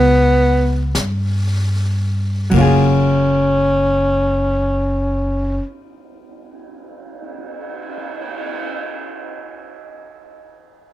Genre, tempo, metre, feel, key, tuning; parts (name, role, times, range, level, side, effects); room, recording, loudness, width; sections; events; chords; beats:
jazz ballad; 37 BPM; 4/4; swing 67% on 8ths; F# major; A4 = 440 Hz
breathy tenor saxophone; melody; 0.0-5.6 s; B3 to C#4; -16 LUFS; equal
hollow-body jazz guitar; accompaniment; 0.0-5.7 s; F#3 to G#4; -20 LUFS; equal
upright bass; bass; 0.0-5.6 s; F#1 to G2; -17 LUFS; equal
jazz brush drum kit; drums; 0.9-8.7 s; brushed snare drum, cymbal swell, hi-hat, kick drum, ride cymbal, snare drum; -29 LUFS; equal
light reverb; -15 LUFS; side -14 dB against mid
0.0-2.5 A section; 2.5-9.0 B section
slowing down 0.0-2.5
0.0 C#7; 2.5 F#maj9
0.96 | 2.52 4.15 5.77 7.39